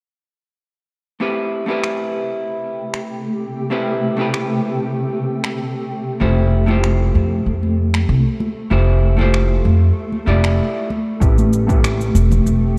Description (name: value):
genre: sunset chillout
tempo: 96 BPM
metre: 4/4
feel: straight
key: A minor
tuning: A4 = 440 Hz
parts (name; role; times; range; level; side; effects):
- vintage hollow-body jazz guitar; accompaniment; 1.2-12.8 s; A3 to D5; -25 LUFS; equal; low-pass filter, tape echo
- shimmering ambient pad; sustained chords; 2.8-12.8 s; C3 to G4; -26 LUFS; equal; chorus, built-in reverb
- electronic finger snaps and cabasa; drums; 1.8-12.6 s; none; -30 LUFS; equal; overdrive
- upright bass; bass; 6.2-12.8 s; E1 to F2; -17 LUFS; equal; none
- congas; percussion; 6.7-12.4 s; none; -27 LUFS; equal; none
- electronic kick drum; drums; 11.2-11.8 s; none; -18 LUFS; equal; overdrive
room: moderate lush hall reverb, RT60 3.1 s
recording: dark, warm production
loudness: -18 LUFS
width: mono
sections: 1.2-11.2 A section; 11.2-12.8 B section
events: filter sweep on ambient pad 1.2-11.2; break 10.6-11.2; filter sweep on hollow-body jazz guitar 11.2-12.8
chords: 1.2 Am7; 6.2 Fmaj7; 10.9 Am7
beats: | 1.21 1.84 2.46 3.09 | 3.71 4.34 4.96 5.59 | 6.21 6.84 7.46 8.09 | 8.71 9.34 9.96 10.59 | 11.21 11.84 12.46